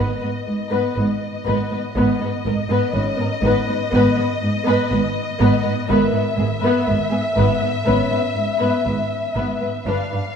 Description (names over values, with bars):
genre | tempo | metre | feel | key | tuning
cinematic, suspense film score | 61 BPM | 4/4 | straight | unclear | A4 = 439 Hz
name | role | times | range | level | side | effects
muted symphonic violin section | melody | 0.0-10.4 s | D#5 to F5 | -25 LUFS | left 4 dB | none
muted symphonic violin section | second line | 0.0-10.2 s | G#4 to B4 | -24 LUFS | left 5 dB | none
muted symphonic viola section | accompaniment | 0.0-10.2 s | B3 to D4 | -24 LUFS | equal | none
muted symphonic cello section | riff | 0.0-10.2 s | G2 to G#2 | -26 LUFS | right 2 dB | none
muted symphonic cello section | bass | 0.0-10.2 s | G2 to G#2 | -24 LUFS | right 2 dB | none
muted symphonic double bass section | bass | 0.0-9.9 s | G1 to G#1 | -27 LUFS | right 3 dB | none
music box | texture | 0.0-10.4 s | C#4 to C#5 | -31 LUFS | equal | none
room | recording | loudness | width
wet scoring stage reverb, RT60 2.1 s | dark, warm production | -17 LUFS | side -7 dB against mid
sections
0.0-10.4 A section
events
none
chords
0.0 G#madd9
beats
0.96 | 1.96 2.94 3.92 4.91 | 5.89 6.88 7.87 8.86 | 9.86